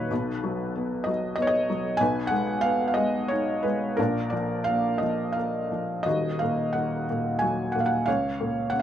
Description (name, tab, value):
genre	classical, lyrical solo piano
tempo	85-97 BPM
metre	3/4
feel	rubato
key	Eb minor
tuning	A4 = 440 Hz
part	felt-muted upright piano	solo	0.0-8.8 s	Eb1 to Ab5	-24 LUFS	equal	none
room	light reverb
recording	none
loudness	-24 LUFS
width	side -10 dB against mid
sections	0.0-8.8 A section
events	none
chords	0.1 B; 2.0 Abm/Cb; 4.0 Bb; 6.1 Ebm; 8.1 Bbm/Db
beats	| 0.11 0.76 1.38 | 2.00 2.63 3.30 | 3.98 4.67 5.36 | 6.06 6.75 7.42 | 8.07 8.73